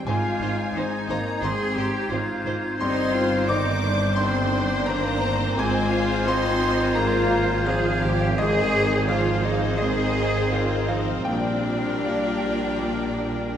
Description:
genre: cinematic, emotional film score for orchestra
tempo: 86 BPM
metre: 4/4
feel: uneven beats, rubato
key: unclear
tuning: A4 = 440 Hz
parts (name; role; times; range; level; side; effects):
- warm symphonic violin section; second line; 0.0-13.6 s; Eb5 to D6; -33 LUFS; left 2 dB; none
- bright concert grand piano; accompaniment; 0.0-13.6 s; G1 to D6; -29 LUFS; left 1 dB; none
- warm French horn section; sustained chords; 0.0-13.6 s; Eb3 to D5; -29 LUFS; left 3 dB; none
- clear symphonic cello section; bass; 0.0-13.6 s; C4 to Ab4; -28 LUFS; right 1 dB; none
- rich chamber violin section; melody; 0.1-13.6 s; C5 to D5; -34 LUFS; left 3 dB; none
- clear oboe; second line; 0.1-13.6 s; Bb4 to C5; -34 LUFS; right 1 dB; none
- hollow concert flute; second line; 0.1-13.6 s; F6 to Ab6; -35 LUFS; left 2 dB; none
- warm clarinet; second line; 0.1-13.6 s; D4 to F4; -33 LUFS; equal; none
- clear symphonic viola section; accompaniment; 0.1-13.6 s; Eb3 to Ab4; -32 LUFS; right 1 dB; none
- clear symphonic double bass section; bass; 0.1-13.6 s; G1 to Bb1; -27 LUFS; right 2 dB; none
room: wet scoring stage reverb, RT60 1.8 s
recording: none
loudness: -20 LUFS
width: side -9 dB against mid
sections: 0.0-13.6 A section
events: none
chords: 0.0 Ab; 2.8 Cm/G; 5.6 Fm/Ab; 8.4 Ab; 11.3 Bb6

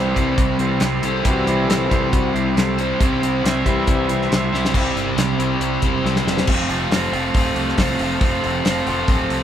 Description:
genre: classic rock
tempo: 138 BPM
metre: 4/4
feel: straight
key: unclear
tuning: A4 = 440 Hz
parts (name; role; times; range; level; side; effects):
- bright tonewheel organ; sustained chords; 0.0-9.4 s; E3 to G5; -27 LUFS; left 1 dB; overdrive, stopped rotary speaker
- cranked stack guitar; riff; 0.0-9.4 s; F2 to C5; -24 LUFS; left 6 dB; overdrive
- cranked stack guitar; riff; 0.0-6.5 s; C3 to C4; -25 LUFS; right 1 dB; overdrive
- distorted electric guitar; riff; 0.0-9.4 s; F2 to C5; -23 LUFS; right 4 dB; distortion
- growling picked electric bass; bass; 0.0-9.4 s; D1 to C2; -26 LUFS; equal; overdrive
- damped 70s drum kit; drums; 0.2-9.4 s; crash cymbal, hi-hat, kick drum, snare drum; -21 LUFS; equal; none
room: moderate large studio reverb, RT60 1.2 s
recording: band playing live in one room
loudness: -16 LUFS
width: side -10 dB against mid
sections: 0.0-4.7 A section; 4.7-6.5 B section; 6.5-9.4 C section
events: tonewheel organ solo 0.0-4.7; drum fill 4.5, 6.0-6.5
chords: 0.0 C; 6.5 F

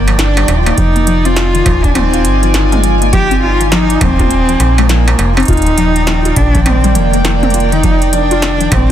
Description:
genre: IDM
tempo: 102 BPM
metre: 4/4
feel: swing 62% on 16ths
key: F dorian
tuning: A4 = 440 Hz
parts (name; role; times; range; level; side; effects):
- dark cello; melody; 0.0-8.9 s; Bb3 to G4; -16 LUFS; equal; digital delay
- warbly tape-like pad; sustained chords; 0.0-8.9 s; Eb3 to Ab5; -18 LUFS; left 1 dB; chorus, built-in reverb, phaser
- warbly dusty pluck; arpeggios; 0.0-8.8 s; Eb3 to F4; -18 LUFS; left 2 dB; phaser, ensemble chorus, ping-pong delay
- metallic FM bass; bass; 0.0-8.9 s; Eb1 to Bb1; -13 LUFS; equal; none
- bubbling stepped-filter texture; texture; 0.0-8.9 s; D5; -26 LUFS; right 5 dB; chorus, built-in reverb
- industrial drum kit; drums; 0.1-8.9 s; hi-hat, snare drum, struck metal, toms; -17 LUFS; right 1 dB; overdrive, small room ambience
- electronic kick drum; drums; 0.8-8.9 s; none; -15 LUFS; equal; overdrive, small room ambience
room: light reverb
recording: dense, heavily limited modern master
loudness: -9 LUFS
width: side -10 dB against mid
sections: 0.0-8.9 A section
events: none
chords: 0.0 Ebmaj7; 0.8 Fm7; 5.5 Ebmaj7

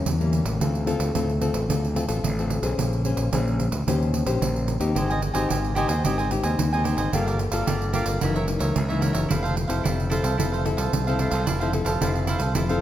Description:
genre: samba and choro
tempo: 110 BPM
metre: 4/4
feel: straight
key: F major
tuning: A4 = 436 Hz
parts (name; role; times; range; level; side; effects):
- nylon-string guitar; accompaniment; 0.0-12.8 s; Gb2 to C5; -27 LUFS; left 4 dB; none
- growling fingered electric bass; bass; 0.0-12.8 s; F1 to E2; -25 LUFS; equal; overdrive
- pandeiro; percussion; 0.1-12.8 s; none; -28 LUFS; right 3 dB; none
- cavaquinho; accompaniment; 4.9-12.8 s; E4 to Ab5; -28 LUFS; right 4 dB; none
room: wet recital hall reverb, RT60 1.9 s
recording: none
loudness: -21 LUFS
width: side -12 dB against mid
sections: 0.0-12.8 A section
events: none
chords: 0.0 A7b9; 0.6 Dm7; 2.8 Bbm9; 3.9 Eb6; 5.0 Abmaj7; 7.1 Gm9; 8.2 Gb6; 9.3 Fmaj7

